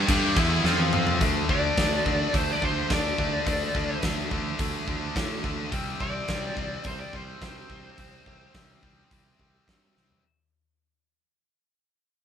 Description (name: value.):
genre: heavy metal.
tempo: 106 BPM.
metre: 4/4.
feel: straight.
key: unclear.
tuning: A4 = 440 Hz.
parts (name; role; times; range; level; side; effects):
clear studio string section; sustained chords; 0.0-1.2 s; F4 to C6; -37 LUFS; equal; none.
distorted electric guitar; riff; 0.0-10.2 s; C3 to G4; -33 LUFS; right 7 dB; overdrive.
high-gain distorted guitar; riff; 0.0-1.2 s; E3 to G4; -30 LUFS; right 2 dB; none.
scooped high-gain guitar; riff; 0.0-10.2 s; C3 to G4; -31 LUFS; left 7 dB; distortion.
fuzz fingered electric bass; bass; 0.0-10.2 s; C2 to A2; -31 LUFS; equal; overdrive.
big rock drum kit; drums; 0.1-10.2 s; crash cymbal, hi-hat, kick drum, snare drum, toms; -28 LUFS; equal; none.
high-gain lead guitar; melody; 1.5-8.5 s; C5 to D5; -30 LUFS; left 2 dB; distortion.
room: moderate studio reverb, RT60 0.6 s.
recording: band playing live in one room.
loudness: -23 LUFS.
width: side -8 dB against mid.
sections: 0.0-1.2 A section; 1.2-10.2 B section.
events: drum fill 0.6-1.2, 10.0; fade-out 1.2-10.2; lead electric guitar solo 1.2-10.2.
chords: 0.1 Am; 0.6 F5; 1.2 D5; 5.7 C5.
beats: 0.09 0.65 | 1.21 1.77 2.34 2.90 | 3.46 4.03 4.59 5.16 | 5.72 6.29 6.85 7.42 | 7.98 8.54 9.11 9.67.